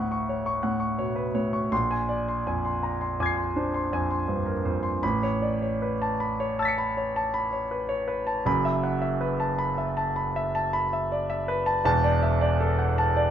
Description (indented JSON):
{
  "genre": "classical, impressionist solo piano",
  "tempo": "53 BPM (dotted quarters)",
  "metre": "9/8",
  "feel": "uneven beats, rubato",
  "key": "A major",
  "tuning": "A4 = 440 Hz",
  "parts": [
    { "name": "clear concert grand piano", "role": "solo", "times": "0.0-13.3 s", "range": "E1 to C#7", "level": "-24 LUFS", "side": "equal", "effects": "none" }
  ],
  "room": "light reverb",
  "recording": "none",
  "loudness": "-24 LUFS",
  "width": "side -9 dB against mid",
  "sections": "0.0-5.0 A section; 5.0-13.3 B section",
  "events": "none",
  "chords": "0.0 Dmaj9; 1.7 Bb9; 5.0 Aadd9; 8.5 F#m7; 11.8 E11"
}